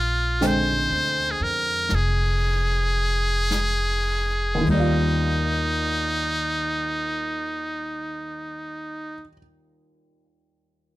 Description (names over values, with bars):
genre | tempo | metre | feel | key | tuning
jazz ballad | 32-42 BPM | 4/4 | swing 66% on 8ths | Eb major | A4 = 440 Hz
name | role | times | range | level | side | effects
trumpet with metal mute | melody | 0.0-9.3 s | Eb4 to C5 | -24 LUFS | equal | none
upright bass | bass | 0.0-9.2 s | F1 to F2 | -26 LUFS | equal | none
dark baby grand piano | accompaniment | 0.4-11.0 s | Eb2 to G5 | -27 LUFS | equal | none
jazz brush drum kit | drums | 0.4-5.0 s | brushed snare drum, hi-hat, kick drum, ride cymbal, snare drum | -35 LUFS | left 2 dB | none
room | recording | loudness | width
little or no reverb | close, detailed microphones | -21 LUFS | side -17 dB against mid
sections
0.0-5.3 A section; 5.3-11.0 B section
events
slowing down 0.0-5.3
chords
0.0 Bb13; 4.4 Ebmaj9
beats
0.41 1.90 3.51 | 5.29 7.16 9.02 10.89